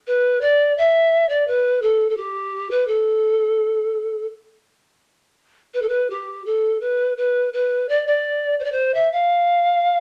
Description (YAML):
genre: andean folk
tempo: 84 BPM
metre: 4/4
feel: straight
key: A minor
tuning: A4 = 439 Hz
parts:
  - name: bright polished pan flute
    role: solo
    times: 0.1-10.0 s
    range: G4 to F5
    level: -20 LUFS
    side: equal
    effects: none
room: wet club reverb, RT60 0.7 s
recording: none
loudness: -20 LUFS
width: mono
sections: 0.0-10.0 A section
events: none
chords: none